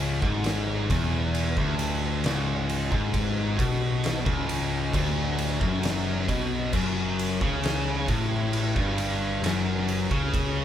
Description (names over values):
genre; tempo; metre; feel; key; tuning
stoner and doom metal; 67 BPM; 4/4; straight; C# minor; A4 = 440 Hz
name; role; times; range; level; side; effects
thick fuzz guitar; riff; 0.0-10.6 s; C#2 to C#3; -29 LUFS; left 6 dB; distortion
tight distorted guitar; riff; 0.0-10.6 s; C#2 to C#3; -28 LUFS; right 2 dB; distortion
picked electric bass; bass; 0.0-10.6 s; C#1 to C#2; -32 LUFS; equal; overdrive
oversized low-tuned drum kit; drums; 0.2-10.5 s; crash cymbal, kick drum, ride cymbal, snare drum; -29 LUFS; right 1 dB; none
room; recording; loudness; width
light reverb; band playing live in one room; -24 LUFS; side -10 dB against mid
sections
0.0-10.6 A section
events
none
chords
0.0 C#m; 6.7 F#5